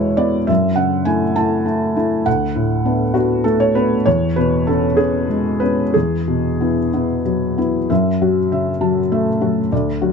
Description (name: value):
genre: neoclassical minimalist piano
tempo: 61-69 BPM (dotted quarters)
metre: 6/8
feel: rubato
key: F# minor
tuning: A4 = 441 Hz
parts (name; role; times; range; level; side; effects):
- felt-muted upright piano; solo; 0.0-10.1 s; D2 to A5; -15 LUFS; left 1 dB; none
room: moderate booth ambience, RT60 0.2 s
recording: dark, warm production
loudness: -15 LUFS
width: side -5 dB against mid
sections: 0.0-7.9 A section; 7.9-10.1 B section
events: none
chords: 0.5 F#m7; 2.3 D6; 4.1 C#m7/E; 5.9 Eadd9; 7.9 F#m7